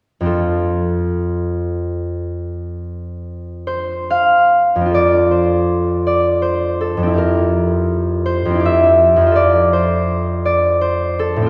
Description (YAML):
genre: classical, solo harp piece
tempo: 68-86 BPM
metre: 3/4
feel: rubato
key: F major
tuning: A4 = 440 Hz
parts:
  - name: concert harp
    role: solo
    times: 0.2-11.5 s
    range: F2 to F5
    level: -16 LUFS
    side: equal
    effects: none
room: wet concert hall reverb, RT60 2.1 s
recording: recorded in a church or concert hall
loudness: -16 LUFS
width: mono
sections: 0.3-4.9 A section; 4.9-11.5 B section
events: none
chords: 0.3 F; 7.2 C7/F; 9.4 F